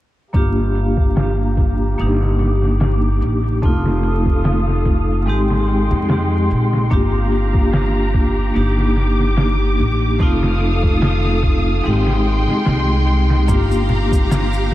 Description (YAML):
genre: trip hop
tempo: 73 BPM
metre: 4/4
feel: swing 54% on 16ths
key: G minor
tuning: A4 = 439 Hz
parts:
  - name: vibraphone with medium mallets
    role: accompaniment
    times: 0.3-14.7 s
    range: Ab3 to G4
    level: -20 LUFS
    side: left 1 dB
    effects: harmonic tremolo, low-pass filter, tape echo
  - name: clear symphonic string section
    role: sustained chords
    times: 0.3-14.7 s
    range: Ab3 to Eb6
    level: -25 LUFS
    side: equal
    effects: low-pass filter
  - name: upright bass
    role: bass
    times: 0.3-14.7 s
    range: F1 to F2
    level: -18 LUFS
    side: equal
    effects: none
  - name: trip hop sampler-style drum kit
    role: drums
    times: 0.3-14.7 s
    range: hi-hat, kick drum, snare drum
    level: -21 LUFS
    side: equal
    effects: overdrive, low-pass filter on hats, low-pass filter on kick, low-pass filter on snare, low-pass filter on room
  - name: maracas and congas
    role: percussion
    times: 13.5-14.7 s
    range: none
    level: -27 LUFS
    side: equal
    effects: none
room: light reverb, small room ambience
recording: vinyl crackle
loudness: -14 LUFS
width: side -15 dB against mid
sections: 0.3-14.7 A section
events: filter sweep on string section 0.3-14.7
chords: 0.3 Gm7; 2.0 Ebmaj7/G; 3.6 F7; 5.3 Abmaj7; 6.9 Gm7; 8.6 Ebmaj7/G; 10.2 F7; 11.8 Abmaj7; 13.5 Gm7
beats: | 0.34 1.16 1.98 2.80 | 3.63 4.45 5.27 6.09 | 6.91 7.74 8.56 9.38 | 10.20 11.02 11.85 12.67 | 13.49 14.31